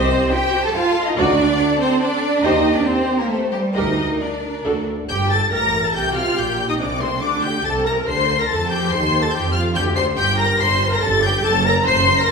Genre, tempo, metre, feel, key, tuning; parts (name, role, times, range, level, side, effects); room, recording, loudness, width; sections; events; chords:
quick classical-period movement for string orchestra; 142 BPM; 3/4; straight; G minor; A4 = 439 Hz
warm symphonic violin section; melody; 0.0-12.3 s; F#4 to C7; -22 LUFS; left 3 dB
clear symphonic violin section; second line; 0.0-12.3 s; G4 to C6; -24 LUFS; left 2 dB
warm symphonic viola section; accompaniment; 0.0-12.3 s; C4 to Eb5; -22 LUFS; left 1 dB
rich symphonic double bass section; bass; 0.0-12.3 s; F#1 to F2; -24 LUFS; right 2 dB
warm chamber cello section; bass; 0.0-12.3 s; F#2 to A4; -22 LUFS; right 2 dB
wet recital hall reverb, RT60 1.5 s; recorded in a church or concert hall, faint mains hum; -16 LUFS; side -5 dB against mid
0.0-5.1 A section; 5.1-12.3 B section
0.0 Am7b5/C; 1.2 D; 2.4 Cm/Eb; 3.7 Gm/D; 4.6 D; 5.1 Gm11; 6.4 Bb69; 7.7 C13sus4; 8.9 F7sus2; 10.2 Gmadd11; 11.4 F#dim